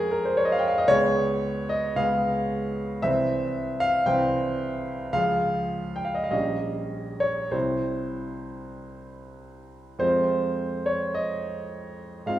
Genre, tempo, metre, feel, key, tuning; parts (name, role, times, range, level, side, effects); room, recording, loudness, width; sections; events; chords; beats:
classical, romantic nocturne for solo piano; 48-59 BPM; 4/4; rubato; F minor; A4 = 440 Hz
clear grand piano; solo; 0.0-12.4 s; Bb1 to G5; -24 LUFS; equal
wet recital hall reverb, RT60 1.5 s; heard from further back in the room; -23 LUFS; side -13 dB against mid
0.0-12.4 A section
0.0 Db/F; 0.9 Db7; 3.1 C; 5.2 Db; 6.3 Gdim/Bb; 7.5 C; 10.0 Fm
| 0.91 1.99 3.06 4.09 | 5.16 6.33 7.54 8.78 | 10.02 11.17 12.29